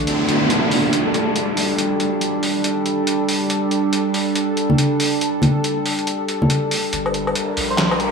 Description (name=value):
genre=deep dubstep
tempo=140 BPM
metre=4/4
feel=swing 61% on 16ths, half-time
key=G minor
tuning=A4 = 441 Hz
part: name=bowed-like drone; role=sustained chords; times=0.0-8.1 s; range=G3 to Bb4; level=-20 LUFS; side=right 1 dB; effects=built-in reverb
part: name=soft dub sub bass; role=bass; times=0.0-0.1, 6.9-8.1 s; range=G1 to Bb1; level=-30 LUFS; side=equal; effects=none
part: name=trip hop sampler-style drum kit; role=drums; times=0.1-8.1 s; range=handclaps, hi-hat, snare drum, woodblock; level=-23 LUFS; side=equal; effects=overdrive
part: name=downlifter and riser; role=sound effects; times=0.1-3.5, 7.3-8.1 s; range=none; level=-22 LUFS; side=equal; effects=none
part: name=congas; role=percussion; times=4.7-6.5 s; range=none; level=-18 LUFS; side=left 1 dB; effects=none
part: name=melodica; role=melody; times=7.7-8.0 s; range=C5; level=-28 LUFS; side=right 2 dB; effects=low-pass filter, dub echo
room=moderate digital room reverb, RT60 1.0 s, digital ambience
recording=small room ambience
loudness=-17 LUFS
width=side -5 dB against mid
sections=0.1-6.9 A section; 6.9-8.1 B section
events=build-up 6.9-8.1; riser 7.3-8.1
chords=0.0 Gsus2; 6.9 Gm